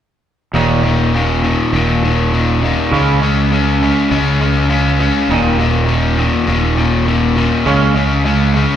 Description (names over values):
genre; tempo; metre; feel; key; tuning
rock; 101 BPM; 4/4; straight; unclear; A4 = 444 Hz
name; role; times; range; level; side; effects
twangy electric guitar; arpeggios; 0.5-8.8 s; Eb2 to Db4; -21 LUFS; right 7 dB; lush chorus, slapback echo
crunchy overdriven guitar; riff; 0.5-8.8 s; Eb2 to Db4; -15 LUFS; left 4 dB; none
fuzz fingered electric bass; bass; 0.5-8.6 s; Eb1 to Db2; -16 LUFS; right 1 dB; overdrive
room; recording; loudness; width
little or no reverb; live gig heard through the venue's PA, recital hall reverb; -12 LUFS; side -10 dB against mid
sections
0.5-8.8 A section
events
none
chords
0.5 Eb5; 2.9 Db5; 5.3 Eb5; 7.6 Db5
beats
| 0.53 1.13 1.73 2.32 | 2.91 3.51 4.10 4.69 | 5.28 5.88 6.47 7.06 | 7.65 8.24